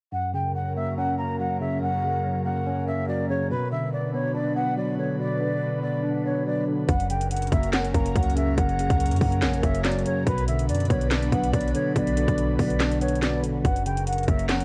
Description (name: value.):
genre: hip hop, trap.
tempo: 142 BPM.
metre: 4/4.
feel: half-time.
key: unclear.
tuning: A4 = 440 Hz.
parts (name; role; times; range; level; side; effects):
mellow silver concert flute; melody; 0.1-14.6 s; B4 to A#5; -31 LUFS; equal; none.
tine electric piano; accompaniment; 0.1-14.6 s; F#2 to D4; -29 LUFS; equal; cassette tape.
airy breathy pad; sustained chords; 0.4-14.6 s; F#3 to B4; -36 LUFS; equal; chorus, phaser, cassette tape.
clean 808-style bass; bass; 6.9-14.6 s; F#1 to F#2; -29 LUFS; equal; none.
trap drum kit; drums; 6.9-14.6 s; handclaps, hi-hat, kick drum, snare drum; -29 LUFS; equal; overdrive, cassette tape.
room: little or no reverb.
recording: home recording on cassette.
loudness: -25 LUFS.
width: mono.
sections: 0.1-6.9 A section; 6.9-14.6 B section.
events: none.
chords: 0.1 F#; 3.5 Bm; 6.9 F#; 10.3 Bm; 13.6 F#.